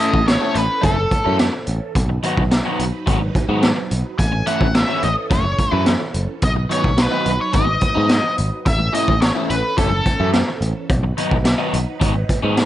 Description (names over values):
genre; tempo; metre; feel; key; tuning
psychedelic rock; 107 BPM; 4/4; straight; A lydian; A4 = 442 Hz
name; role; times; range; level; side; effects
octave-fuzz lead guitar; melody; 0.0-10.3 s; A4 to G#5; -21 LUFS; equal; wah, distortion, slapback echo
phased string machine; sustained chords; 0.0-12.7 s; E3 to B4; -30 LUFS; right 4 dB; ensemble chorus, phaser
crunchy overdriven guitar; riff; 0.0-12.6 s; D#3 to A4; -23 LUFS; left 1 dB; phaser
raw garage drum kit; drums; 0.0-12.7 s; hi-hat, kick drum, snare drum; -19 LUFS; equal; none
picked electric bass; bass; 0.1-12.6 s; F#1 to G#2; -21 LUFS; equal; none
room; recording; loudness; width
light reverb, small room ambience; nothing above 10.5 kHz; -16 LUFS; side -13 dB against mid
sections
0.0-12.7 A section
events
none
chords
0.0 A; 2.0 B; 4.2 A; 6.4 B; 8.7 A; 10.9 B